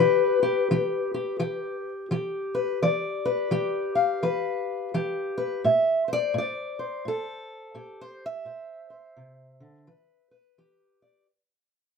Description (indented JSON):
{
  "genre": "acoustic country blues, solo or duo",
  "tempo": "85 BPM",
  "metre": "4/4",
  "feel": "swing 61% on 8ths",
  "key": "unclear",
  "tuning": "A4 = 440 Hz",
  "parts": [
    { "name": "fingerpicked steel-string acoustic guitar", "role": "solo", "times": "0.0-11.3 s", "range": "A2 to F5", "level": "-24 LUFS", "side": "left 2 dB", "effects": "none" }
  ],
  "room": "light reverb",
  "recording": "dark, warm production",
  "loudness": "-24 LUFS",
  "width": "side -5 dB against mid",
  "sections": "0.0-11.3 A section",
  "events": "fade-out 0.0-11.3; steel-string acoustic guitar solo 0.0-11.3",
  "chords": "0.0 Em7; 5.6 Am7; 9.9 Em7"
}